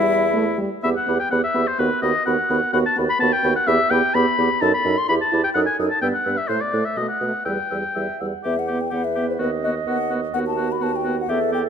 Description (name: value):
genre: quick classical-period movement for wind quintet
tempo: 127 BPM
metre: 2/4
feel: rubato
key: E minor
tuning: A4 = 440 Hz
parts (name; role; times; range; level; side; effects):
- mellow hollow concert flute; melody; 0.0-11.6 s; B4 to F#6; -27 LUFS; left 8 dB; none
- warm oboe; second line; 0.0-11.6 s; E4 to C6; -22 LUFS; left 3 dB; none
- warm French horn; accompaniment; 0.0-11.6 s; G3 to E4; -26 LUFS; right 2 dB; none
- warm clarinet; accompaniment; 0.0-11.7 s; E4 to F#5; -28 LUFS; right 10 dB; none
- mellow bassoon; bass; 0.0-11.7 s; D#2 to B2; -25 LUFS; right 3 dB; none
room: moderate scoring stage reverb, RT60 1.7 s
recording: none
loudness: -18 LUFS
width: side -7 dB against mid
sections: 0.8-8.4 A section; 8.4-11.7 A section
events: none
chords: 0.0 Em; 1.8 B/D#; 3.7 Em; 4.6 B7/F#; 5.1 Em; 5.6 D#dim/F#; 6.0 Em/G; 6.5 F#dim/A (rootless); 7.0 B7; 7.5 Em; 9.4 B/D#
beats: 0.34 | 0.83 1.31 | 1.79 2.27 | 2.74 3.21 | 3.68 4.15 | 4.62 5.09 | 5.56 6.03 | 6.49 6.97 | 7.46 7.96 | 8.45 8.93 | 9.40 9.87 | 10.34 10.82 | 11.29